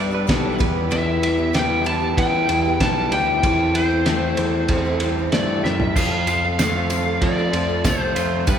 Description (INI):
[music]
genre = folk rock and heartland rock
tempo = 95 BPM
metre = 4/4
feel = straight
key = unclear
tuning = A4 = 438 Hz
[part]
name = lead guitar through a small cranked amp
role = melody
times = 0.0-8.6 s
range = B4 to A5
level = -23 LUFS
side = left 1 dB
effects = overdrive
[part]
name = pedal steel guitar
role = second line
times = 0.0-0.9 s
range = A4 to D5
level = -31 LUFS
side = right 7 dB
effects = none
[part]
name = picked twelve-string acoustic guitar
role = accompaniment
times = 0.0-8.6 s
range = G2 to A4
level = -25 LUFS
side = left 4 dB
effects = none
[part]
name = electric guitar through a small old amp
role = riff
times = 0.0-8.6 s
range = E2 to G4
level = -26 LUFS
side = right 2 dB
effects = none
[part]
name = picked electric bass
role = bass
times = 0.0-8.6 s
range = B1 to F3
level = -25 LUFS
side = equal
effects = none
[part]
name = cloth-damped thuddy drum kit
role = drums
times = 0.3-8.6 s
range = crash cymbal, kick drum, ride cymbal, snare drum, toms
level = -23 LUFS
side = right 1 dB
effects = none
[part]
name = tambourine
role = percussion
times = 6.0-8.6 s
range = none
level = -36 LUFS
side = right 9 dB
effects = none
[sound]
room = wet church reverb, RT60 3.3 s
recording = recorded in a church or concert hall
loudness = -17 LUFS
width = side -8 dB against mid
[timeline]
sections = 0.0-8.6 A section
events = drum fill 5.6-6.0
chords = 0.0 G; 0.6 Em; 3.4 C6/E; 6.0 F